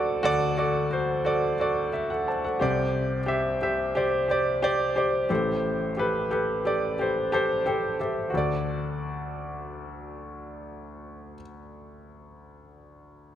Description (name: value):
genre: pop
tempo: 89 BPM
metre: 4/4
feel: straight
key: D mixolydian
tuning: A4 = 440 Hz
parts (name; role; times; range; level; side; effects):
- clear grand piano; solo; 0.0-13.3 s; A1 to A5; -25 LUFS; equal; none
room: wet concert hall reverb, RT60 2.0 s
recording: none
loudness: -24 LUFS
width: side -10 dB against mid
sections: 0.0-8.3 A section; 8.3-11.0 B section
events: grand piano fill 7.0-8.3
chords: 0.0 D; 2.6 Csus2; 5.3 Am7; 8.3 D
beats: | 0.24 0.91 1.59 2.26 | 2.94 3.61 4.29 4.96 | 5.63 6.31 6.99 7.66 | 8.33 9.01 9.68 10.36